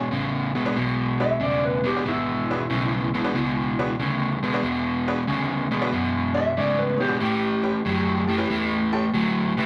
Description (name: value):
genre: blues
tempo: 93 BPM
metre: 4/4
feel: swing 68% on 8ths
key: E mixolydian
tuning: A4 = 440 Hz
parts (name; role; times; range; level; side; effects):
- overdriven semi-hollow guitar; riff; 0.0-9.7 s; E2 to F#3; -26 LUFS; equal; none
- vintage muted fingered electric bass; bass; 0.0-9.6 s; E1 to A2; -34 LUFS; equal; none
- tack piano; accompaniment; 0.6-9.6 s; C#4 to D5; -32 LUFS; equal; none
- electric guitar through a small old amp; melody; 1.2-9.1 s; E4 to E5; -29 LUFS; equal; none
room: moderate studio reverb, RT60 0.9 s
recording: vinyl crackle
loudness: -24 LUFS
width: mono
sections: 0.0-9.7 A section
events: clean electric guitar solo 0.0-9.7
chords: 0.0 E7; 7.2 A7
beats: 0.12 0.76 1.41 | 2.05 2.69 3.34 3.98 | 4.63 5.27 5.91 6.56 | 7.20 7.84 8.48 9.13